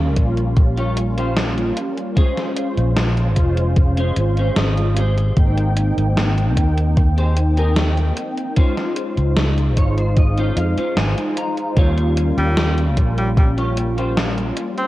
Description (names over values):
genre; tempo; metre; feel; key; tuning
vaporwave; 75 BPM; 4/4; straight; Ab major; A4 = 436 Hz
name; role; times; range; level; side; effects
mellow synth brass; accompaniment; 0.0-14.9 s; G3 to G5; -23 LUFS; equal; ensemble chorus, tape echo
sustaining fretless electric bass; bass; 0.0-14.5 s; F1 to F2; -18 LUFS; equal; none
electronic kick drum; drums; 0.2-13.5 s; none; -15 LUFS; equal; none
gated 80s digital drum machine; drums; 0.2-14.9 s; hi-hat, snare drum; -24 LUFS; equal; gated reverb, gated reverb snare
clean electric guitar; riff; 0.6-14.4 s; Db4 to Bb5; -27 LUFS; left 1 dB; ensemble chorus, tape echo
clear tenor saxophone; melody; 12.4-14.9 s; G3 to C4; -26 LUFS; equal; vintage 12-bit sampler grit, tape echo
room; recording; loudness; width
light reverb; cassette tape; -16 LUFS; side -16 dB against mid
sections
0.0-14.9 A section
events
clean electric guitar fill 4.2-5.4, 9.4-11.8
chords
0.0 Eb9 (rootless); 2.2 Bbm9; 5.0 Abmaj7; 8.6 Dbmaj7; 11.8 Eb9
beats
0.57 1.37 | 2.17 2.97 3.77 4.57 | 5.37 6.17 6.97 7.77 | 8.57 9.37 10.17 10.97 | 11.77 12.57 13.37 14.17